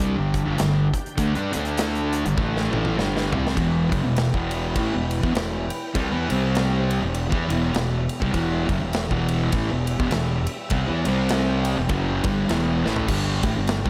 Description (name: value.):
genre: stoner and doom metal.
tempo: 101 BPM.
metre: 4/4.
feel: swing 59% on 8ths.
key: E minor.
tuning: A4 = 440 Hz.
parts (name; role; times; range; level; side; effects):
string machine, full ensemble; sustained chords; 0.0-13.9 s; B3 to A5; -37 LUFS; equal; none.
fuzz guitar; riff; 0.0-13.9 s; E2 to D4; -32 LUFS; equal; distortion.
thick fuzz guitar; riff; 0.0-13.9 s; E2 to D4; -30 LUFS; equal; distortion.
thick fuzz guitar; riff; 0.0-13.9 s; E2 to D4; -29 LUFS; equal; distortion.
fuzz fingered electric bass; bass; 0.0-13.9 s; E1 to G2; -30 LUFS; equal; overdrive.
big rock drum kit; drums; 0.3-13.9 s; crash cymbal, hi-hat, kick drum, ride cymbal, snare drum, toms; -30 LUFS; equal; none.
room: light reverb, studio reverb.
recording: none.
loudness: -23 LUFS.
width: mono.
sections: 0.0-3.6 A section; 3.6-13.9 B section.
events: drum fill 2.4-3.6, 12.8.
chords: 0.0 G5; 1.5 D5; 2.2 G5; 3.6 Em; 6.3 C5; 7.0 Em; 11.0 C5; 11.8 Em; 13.1 G5.